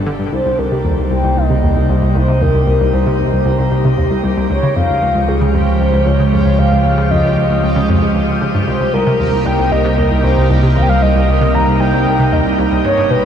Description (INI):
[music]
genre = ambient, sequencer-driven space music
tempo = 115 BPM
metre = 4/4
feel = straight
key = C phrygian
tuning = A4 = 439 Hz
[part]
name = evolving wavetable pad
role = sustained chords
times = 0.0-13.2 s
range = B2 to B4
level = -18 LUFS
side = right 2 dB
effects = chorus, built-in reverb
[part]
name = analog pluck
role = riff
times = 0.0-13.2 s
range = C2 to D3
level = -17 LUFS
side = left 1 dB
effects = chorus, ping-pong delay
[part]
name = fat analog bass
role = bass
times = 0.0-13.2 s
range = G1 to Db2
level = -17 LUFS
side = equal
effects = none
[part]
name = bubbling stepped-filter texture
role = texture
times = 0.0-13.2 s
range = G4 to G5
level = -26 LUFS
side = equal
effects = chorus, built-in reverb
[part]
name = mellow horn-like synth lead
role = melody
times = 0.3-13.2 s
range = Ab4 to Bb5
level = -17 LUFS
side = equal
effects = chorus, ping-pong delay
[sound]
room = moderate shimmer reverb, RT60 7.6 s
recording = dark, warm production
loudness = -11 LUFS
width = side -8 dB against mid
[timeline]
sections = 0.0-13.2 A section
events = none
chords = 0.3 Cm7; 4.5 Db; 8.7 Cm7